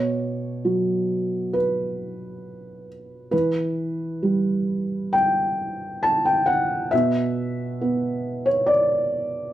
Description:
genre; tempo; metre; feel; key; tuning
neoclassical minimalist piano; 68 BPM; 4/4; rubato; unclear; A4 = 438 Hz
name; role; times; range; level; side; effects
felt-muted upright piano; solo; 0.0-9.5 s; B2 to A5; -21 LUFS; equal; none
room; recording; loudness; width
moderate studio reverb, RT60 0.7 s; band playing live in one room; -20 LUFS; side -12 dB against mid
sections
0.0-9.5 A section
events
none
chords
0.0 B5; 3.3 Em; 6.9 N.C.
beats
0.66 1.55 2.45 | 3.33 4.22 5.14 6.04 | 6.92 7.80 8.68

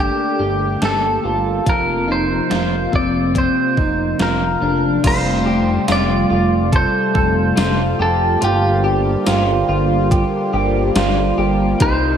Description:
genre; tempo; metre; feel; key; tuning
dream pop; 71 BPM; 4/4; straight; unclear; A4 = 440 Hz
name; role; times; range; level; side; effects
clean electric guitar; melody; 0.0-12.2 s; G4 to D5; -21 LUFS; equal; spring reverb, tape echo, slapback echo
lush unison pad; sustained chords; 0.0-12.2 s; C3 to G4; -21 LUFS; equal; chorus, phaser
electric guitar at the edge of break-up; arpeggios; 0.0-12.2 s; C4 to A4; -21 LUFS; equal; analog chorus, tape echo, slapback echo
chorused synth bass; bass; 0.0-12.2 s; F1 to C2; -21 LUFS; equal; none
gated 80s digital drum machine; drums; 0.8-12.0 s; crash cymbal, hi-hat, kick drum, snare drum, tambourine; -20 LUFS; equal; gated reverb, gated reverb snare, overdrive
vibraphone with medium hard mallets; texture; 5.1-12.2 s; G4 to G5; -29 LUFS; right 2 dB; tape echo
room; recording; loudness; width
moderate lush hall reverb, RT60 2.8 s; big arena sound; -14 LUFS; side -8 dB against mid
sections
0.0-5.0 A section; 5.0-12.2 B section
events
none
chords
0.0 Gmadd9; 1.7 Fsus4; 5.0 Fadd9; 8.4 Gm7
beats
0.81 | 1.66 2.51 3.35 4.20 | 5.04 5.89 6.73 7.58 | 8.42 9.27 10.11 10.96 | 11.80

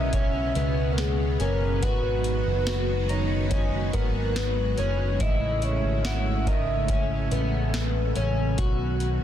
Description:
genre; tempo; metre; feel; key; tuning
dream pop; 71 BPM; 4/4; straight; unclear; A4 = 439 Hz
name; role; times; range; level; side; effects
soft octave-layered synth lead; melody; 0.0-8.2 s; G#4 to F#5; -31 LUFS; equal; chorus, phaser, ping-pong delay
string machine, full ensemble; sustained chords; 0.0-9.2 s; B2 to F#4; -30 LUFS; right 1 dB; ensemble chorus
fingerpicked twelve-string acoustic guitar; arpeggios; 0.0-9.2 s; D#3 to F#4; -32 LUFS; left 4 dB; wide subtle chorus, ping-pong delay
deep dub picked electric bass; bass; 0.0-9.2 s; F#1 to C#2; -27 LUFS; equal; none
booming analog drum machine; drums; 0.1-9.2 s; hi-hat, kick drum, snare drum; -28 LUFS; equal; none
room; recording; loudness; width
light reverb, digital ambience; dense, heavily limited modern master; -23 LUFS; side -10 dB against mid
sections
0.0-9.2 A section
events
none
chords
0.0 C#m7; 5.2 Amaj7; 8.6 B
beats
0.13 0.98 | 1.82 2.67 3.51 4.36 | 5.20 6.05 6.89 7.74 | 8.58

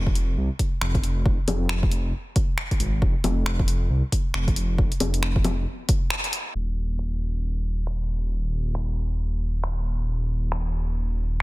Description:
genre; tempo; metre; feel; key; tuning
future garage; 136 BPM; 4/4; swing 60% on 16ths; unclear; A4 = 439 Hz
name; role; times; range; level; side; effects
dark detuned saw bass; bass; 0.0-11.4 s; Eb1 to C2; -24 LUFS; equal; sidechain pumping
electronic kick drum; drums; 0.1-6.0 s; none; -23 LUFS; equal; small room reverb
deep house drum kit; drums; 0.2-11.4 s; bongos, finger snaps, hi-hat; -29 LUFS; left 1 dB; low-pass filter on hats, small room reverb, low-pass filter on perc, soft clipping on snare, low-pass filter on snare
room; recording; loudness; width
little or no reverb; dense, heavily limited modern master, low-pass filter; -22 LUFS; side -20 dB against mid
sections
0.0-6.5 A section; 6.5-11.4 B section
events
break 6.1-6.5; band accent 6.1; filter sweep 6.5-11.4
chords
none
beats
0.37 0.81 | 1.26 1.70 2.14 2.58 | 3.02 3.46 3.90 4.34 | 4.79 5.23 5.67 6.11 | 6.55 6.99 7.43 7.87 | 8.31 8.76 9.20 9.64 | 10.08 10.52 10.96 11.40

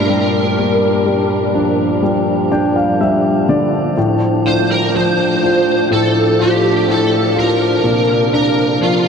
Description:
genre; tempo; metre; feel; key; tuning
pop; 62 BPM; 4/4; straight; unclear; A4 = 440 Hz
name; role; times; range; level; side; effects
lead guitar through a small cranked amp; melody; 0.0-9.1 s; F4 to C5; -18 LUFS; right 1 dB; overdrive, ensemble chorus, diffuse ambient delay
clear grand piano; accompaniment; 0.0-9.1 s; G2 to G5; -15 LUFS; left 2 dB; none
tonewheel organ; sustained chords; 0.0-9.1 s; A2 to D4; -18 LUFS; right 3 dB; overdrive, stopped rotary speaker
room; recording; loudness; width
wet huge ambient reverb, RT60 8.6 s; dreamy mix soaked in reverb; -12 LUFS; side -6 dB against mid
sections
0.0-9.1 A section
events
grand piano fill 2.0-4.0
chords
0.0 Gm; 4.0 Dm/A; 7.8 Bbadd9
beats
| 0.10 1.06 2.03 3.00 | 3.97 4.93 5.90 6.87 | 7.84 8.81

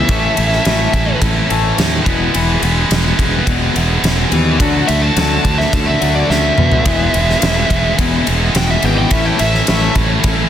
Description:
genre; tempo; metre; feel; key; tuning
quiet-loud alternative rock; 106 BPM; 4/4; straight; E major; A4 = 440 Hz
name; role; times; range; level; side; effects
fuzz lead guitar; melody; 0.0-1.2, 4.9-9.9 s; D5 to A5; -19 LUFS; right 1 dB; distortion, tape echo
twangy electric guitar; arpeggios; 0.0-10.5 s; E2 to A3; -22 LUFS; left 6 dB; analog chorus
heavy high-gain guitar; riff; 0.0-10.5 s; A2 to F#4; -17 LUFS; right 1 dB; distortion
fuzz fingered electric bass; bass; 0.1-10.4 s; E1 to B2; -17 LUFS; equal; overdrive
big rock drum kit; drums; 0.1-10.4 s; kick drum, ride cymbal, snare drum, toms; -17 LUFS; equal; soft clipping on kick
room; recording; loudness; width
light reverb; dense, heavily limited modern master; -12 LUFS; side -10 dB against mid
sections
0.0-10.5 A section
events
lead electric guitar solo 0.0-10.5; drum fill 6.3-6.9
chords
0.1 A; 2.1 E; 4.6 Dadd9; 6.9 E; 9.1 A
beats
| 0.09 0.66 1.22 1.78 | 2.35 2.91 3.48 4.04 | 4.61 5.17 5.73 6.30 | 6.86 7.42 7.99 8.55 | 9.12 9.68 10.24

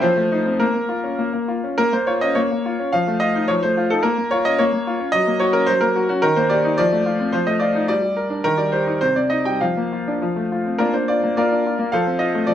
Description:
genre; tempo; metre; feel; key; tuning
classical-period piano sonatina; 99-111 BPM; 2/4; rubato; Bb minor, Bb major from 6.2 s; A4 = 442 Hz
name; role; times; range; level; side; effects
bright grand piano; solo; 0.0-12.5 s; C3 to G5; -17 LUFS; equal; none
room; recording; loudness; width
moderate large studio reverb, RT60 0.9 s; faint mains hum; -17 LUFS; side -10 dB against mid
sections
0.0-1.8 A section; 1.8-10.8 A section; 10.8-12.5 B section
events
none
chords
0.0 F7; 0.6 Bbm; 2.9 F7; 4.0 Bbm; 5.1 Gb; 6.2 Eb; 6.8 F; 7.3 F7; 7.9 Gm; 8.4 Eb; 9.0 Cm; 9.6 Bb/F; 10.2 F; 10.8 Bb; 11.9 F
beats
0.03 | 0.62 1.21 | 1.79 2.37 | 2.93 3.49 | 4.04 4.59 | 5.14 5.69 | 6.24 6.79 | 7.33 7.89 | 8.45 9.02 | 9.61 10.21 | 10.80 11.37 | 11.93 12.47

